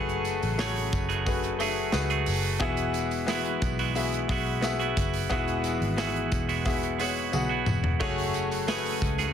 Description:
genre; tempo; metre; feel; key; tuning
piano-driven pop; 89 BPM; 4/4; straight; unclear; A4 = 440 Hz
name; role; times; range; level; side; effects
clear grand piano; accompaniment; 0.0-9.3 s; E3 to F#5; -30 LUFS; left 5 dB; none
clean electric guitar; riff; 0.0-9.3 s; F#2 to G#4; -31 LUFS; right 10 dB; none
vintage muted picked electric bass; bass; 0.0-9.3 s; E1 to C#2; -32 LUFS; equal; none
modern studio drum kit; drums; 0.1-9.3 s; hi-hat, kick drum, snare drum, splash cymbal, toms; -32 LUFS; equal; none
tambourine; percussion; 0.2-9.3 s; none; -45 LUFS; left 6 dB; none
room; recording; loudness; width
light reverb, studio reverb; dense, heavily limited modern master; -25 LUFS; side -8 dB against mid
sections
0.0-9.3 A section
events
drum fill 7.3-8.0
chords
0.0 F#madd9; 2.6 Eadd9; 8.0 F#madd9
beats
0.60 1.27 1.94 | 2.62 3.29 3.96 4.64 | 5.31 5.99 6.66 7.33 | 8.01 8.68

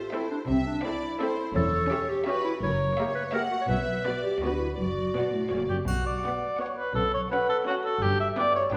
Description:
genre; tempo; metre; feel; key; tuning
cinematic, playful, whimsical film cue; 168 BPM; 3/4; straight; B minor; A4 = 440 Hz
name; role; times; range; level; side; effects
rich chamber violin section; melody; 0.0-8.8 s; C#5 to G5; -42 LUFS; equal; none
clear clarinet; second line; 0.0-5.7 s; C4 to C#5; -32 LUFS; equal; none
rich studio violin section; second line; 0.0-8.8 s; E4 to F#5; -38 LUFS; equal; none
rich chamber viola section; accompaniment; 0.0-8.8 s; A#3 to A4; -37 LUFS; equal; none
dark chamber double bass section; bass; 0.5-8.8 s; E1 to D2; -36 LUFS; equal; none
rich studio cello section; bass; 0.5-8.8 s; E2 to D3; -35 LUFS; equal; none
marimba with medium mallets; melody; 5.7-8.7 s; F#4 to E5; -34 LUFS; equal; none
warm cor anglais; second line; 5.7-8.8 s; F#4 to E5; -30 LUFS; equal; none
triangle; percussion; 5.9-6.6 s; none; -51 LUFS; equal; none
room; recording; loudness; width
wet recital hall reverb, RT60 1.4 s; recorded in a church or concert hall; -28 LUFS; mono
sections
0.0-5.9 A section; 5.9-8.8 B section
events
none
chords
0.5 Am/C; 1.6 C#dim/E; 2.6 F#7b9; 3.7 Bm; 4.4 Bm/D; 4.8 Bm/F#; 5.5 F#; 5.9 Bm; 7.0 F#5/B; 8.0 Em/G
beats
0.13 | 0.49 0.84 1.20 | 1.55 1.91 2.27 | 2.62 2.98 3.34 | 3.70 4.06 4.42 | 4.78 5.15 5.51 | 5.87 6.24 6.59 | 6.95 7.31 7.67 | 8.03 8.38 8.74

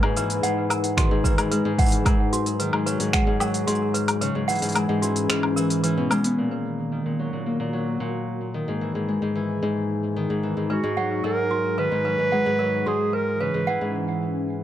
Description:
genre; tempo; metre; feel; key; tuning
folktronica; 111 BPM; 4/4; straight; unclear; A4 = 440 Hz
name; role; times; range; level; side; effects
toy piano; second line; 0.0-6.4, 10.7-13.8 s; F#4 to F#5; -30 LUFS; right 4 dB; tape echo, plate reverb
warbly tape-like pad; sustained chords; 0.0-14.6 s; D#3 to B4; -29 LUFS; equal; chorus, built-in reverb, plate reverb
Celtic harp; arpeggios; 0.0-14.6 s; G#2 to B3; -25 LUFS; left 2 dB; low-pass filter, tape echo, plate reverb
organic electronic drum kit; drums; 0.0-13.9 s; finger snaps, hi-hat, shaker, woodblock; -26 LUFS; left 2 dB; low-pass filter on perc, low-pass filter on snare, low-pass filter on hats
electronic kick drum; drums; 1.0-3.2 s; none; -21 LUFS; right 1 dB; none
clear clarinet; melody; 10.7-13.9 s; F#4 to B4; -24 LUFS; right 2 dB; vintage 12-bit sampler grit, tape echo, plate reverb
room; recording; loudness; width
moderate small room ambience, RT60 0.5 s; none; -21 LUFS; side -11 dB against mid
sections
0.0-6.4 A section; 6.4-14.6 B section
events
kick drops out 4.2-6.4; break 13.9-14.6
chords
0.0 Emaj7; 2.1 G#m7; 4.2 C#m7; 6.4 D#m/A#; 8.5 Emaj7; 10.7 G#m7; 12.9 C#m7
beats
0.43 0.97 1.51 | 2.05 2.60 3.13 3.68 | 4.22 4.76 5.30 5.84 | 6.38 6.92 7.46 8.00 | 8.54 9.08 9.62 10.16 | 10.70 11.24 11.78 12.32 | 12.87 13.41 13.95 14.49

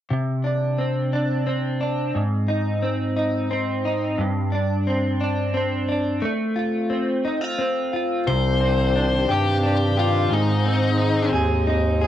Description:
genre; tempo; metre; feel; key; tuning
pop; 59 BPM (dotted quarters); 6/8; straight; C minor; A4 = 441 Hz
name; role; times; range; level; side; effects
direct-recorded clean electric guitar; accompaniment; 0.1-12.1 s; G2 to Ab4; -21 LUFS; equal; double-tracked left and right
high-gain lead guitar; melody; 8.3-11.3 s; Eb4 to C5; -24 LUFS; left 5 dB; distortion, plate reverb, tape echo
warm studio string section; sustained chords; 8.3-12.1 s; C3 to G4; -28 LUFS; equal; plate reverb
mellow bass clarinet; bass; 8.3-12.1 s; C2 to Ab2; -22 LUFS; equal; none
room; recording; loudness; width
moderate small room ambience, RT60 0.5 s; home recording on cassette; -20 LUFS; side -11 dB against mid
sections
0.1-8.3 A section; 8.3-12.1 B section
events
none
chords
0.1 Csus2; 2.1 Ab; 4.2 Csus2/G; 6.2 F/A; 8.3 Cmadd9; 10.3 Ab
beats
| 0.10 1.12 | 2.15 3.17 | 4.19 5.21 | 6.23 7.25 | 8.27 9.29 | 10.30 11.32

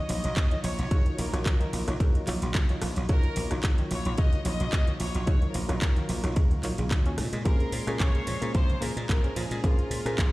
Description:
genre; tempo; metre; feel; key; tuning
nu-disco, nu disco; 110 BPM; 4/4; swing 54% on 16ths; Eb dorian; A4 = 440 Hz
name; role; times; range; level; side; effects
rich chamber violin section; melody; 0.0-10.3 s; F4 to Eb5; -37 LUFS; left 1 dB; digital delay
lush unison pad; sustained chords; 0.0-10.3 s; Gb3 to C6; -39 LUFS; equal; chorus, sidechain pumping
analog pluck; arpeggios; 0.0-9.6 s; C3 to Db4; -38 LUFS; right 3 dB; chorus, sidechain pumping, digital delay
dry thumbed slap bass; bass; 0.0-10.3 s; Bb1 to Bb2; -31 LUFS; equal; sidechain pumping
reed electric piano; accompaniment; 0.1-10.3 s; Gb3 to Db5; -36 LUFS; equal; overdrive, sidechain pumping
house drum kit; drums; 0.1-10.3 s; handclaps, hi-hat, ride cymbal, rim click; -36 LUFS; equal; none
electronic kick drum; drums; 0.4-10.3 s; none; -24 LUFS; equal; none
room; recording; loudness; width
little or no reverb; played on a big sound system in a bare room, stone room reverb; -24 LUFS; side -19 dB against mid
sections
0.0-10.3 A section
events
none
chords
0.0 Ebm9; 7.2 Bbm9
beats
0.37 | 0.91 1.46 2.00 2.55 | 3.09 3.64 4.18 4.73 | 5.28 5.82 6.37 6.91 | 7.46 8.00 8.55 9.09 | 9.64 10.19

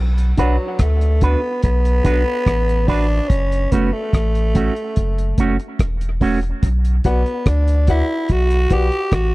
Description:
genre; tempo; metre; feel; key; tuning
dub reggae; 72 BPM; 4/4; straight; B minor; A4 = 439 Hz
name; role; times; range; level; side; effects
warm sub bass; bass; 0.0-9.3 s; E1 to D2; -17 LUFS; equal; none
cloth-damped thuddy drum kit; drums; 0.2-9.3 s; hi-hat, kick drum, rim click; -17 LUFS; equal; none
growling tenor saxophone; melody; 0.4-9.3 s; F#3 to G4; -21 LUFS; equal; dub echo
electric guitar with an envelope filter; accompaniment; 0.4-6.5 s; A3 to B4; -24 LUFS; right 4 dB; dub echo
dark upright piano; stabs; 0.4-0.5, 7.0-8.9 s; F#4 to F#5; -26 LUFS; left 4 dB; dub echo
room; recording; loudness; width
studio reverb; dry, close 1970s-style studio recording; -15 LUFS; side -20 dB against mid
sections
0.0-9.3 A section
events
break 0.0-6.6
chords
0.0 Bm; 3.3 F#m; 6.6 Bm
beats
0.80 1.63 2.46 | 3.30 4.13 4.96 5.79 | 6.62 7.46 8.29 9.12

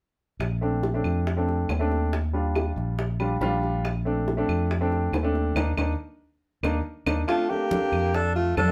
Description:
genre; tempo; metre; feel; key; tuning
Afro-Cuban jazz; 140 BPM; 4/4; straight; Bb major; A4 = 439 Hz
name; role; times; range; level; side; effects
fingered electric bass; bass; 0.4-8.7 s; Bb1 to F2; -29 LUFS; equal; none
bongos; percussion; 0.4-8.7 s; none; -34 LUFS; equal; none
claves; percussion; 0.4-8.7 s; none; -38 LUFS; equal; none
warm upright piano; accompaniment; 0.6-8.7 s; G3 to A4; -30 LUFS; equal; none
breathy alto saxophone; melody; 7.3-8.7 s; F4 to A4; -27 LUFS; equal; none
clear tenor saxophone; second line; 7.3-8.7 s; A3 to D4; -33 LUFS; equal; none
congas; percussion; 7.3-8.7 s; none; -34 LUFS; equal; none
room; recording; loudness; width
moderate studio reverb, RT60 0.5 s; band playing live in one room; -26 LUFS; mono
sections
0.4-7.3 A section; 7.3-8.7 B section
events
band accent 5.6-7.3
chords
0.4 Bbmaj7; 2.1 Ebmaj7; 3.8 Bbmaj7; 5.6 Eb5; 7.3 Bbmaj7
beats
| 0.40 0.83 1.26 1.69 | 2.12 2.55 2.98 3.41 | 3.84 4.27 4.70 5.13 | 5.56 5.99 6.42 6.85 | 7.28 7.71 8.14 8.57

